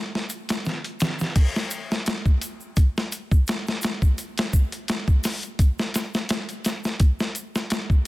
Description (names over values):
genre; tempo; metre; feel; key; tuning
trip hop; 85 BPM; 4/4; swing 55% on 16ths; none; none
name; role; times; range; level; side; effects
boom bap sampler-style drum kit; drums; 0.2-8.1 s; crash cymbal, hi-hat, kick drum, snare drum; -21 LUFS; equal; studio reverb
egg shaker; percussion; 0.3-8.0 s; none; -38 LUFS; right 1 dB; none
room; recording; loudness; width
light reverb; dense, heavily limited modern master; -22 LUFS; side -19 dB against mid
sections
0.0-1.4 A section; 1.4-8.1 B section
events
none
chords
none